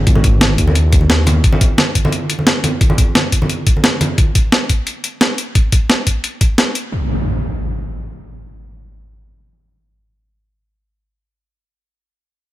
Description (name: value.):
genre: liquid drum and bass.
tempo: 175 BPM.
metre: 4/4.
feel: straight.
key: unclear.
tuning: A4 = 439 Hz.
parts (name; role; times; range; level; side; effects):
dark detuned saw bass; bass; 0.0-1.4 s; G#1 to D#2; -13 LUFS; equal; none.
breakbeat sampler-style drum kit; drums; 0.1-6.8 s; hi-hat, snare drum; -16 LUFS; equal; none.
electronic kick drum; drums; 0.1-6.5 s; none; -13 LUFS; equal; none.
congas; percussion; 0.2-4.1 s; none; -19 LUFS; right 1 dB; none.
impact; sound effects; 6.9-11.1 s; none; -21 LUFS; equal; none.
room: light reverb.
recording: none.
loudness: -12 LUFS.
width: side -15 dB against mid.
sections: 0.0-6.9 A section; 6.9-9.7 B section.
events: none.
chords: none.